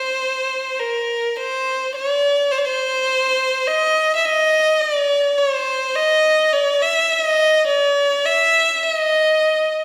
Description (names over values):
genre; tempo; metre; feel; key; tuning
Arabic maqam ensemble; free time; none; none; C maqam saba; A4 = 440 Hz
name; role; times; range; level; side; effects
rich violin; solo; 0.0-9.8 s; Bb4 to E5; -18 LUFS; equal; none
room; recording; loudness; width
wet large studio reverb, RT60 1.4 s; band playing live in one room; -18 LUFS; mono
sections
0.0-9.8 A section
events
none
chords
none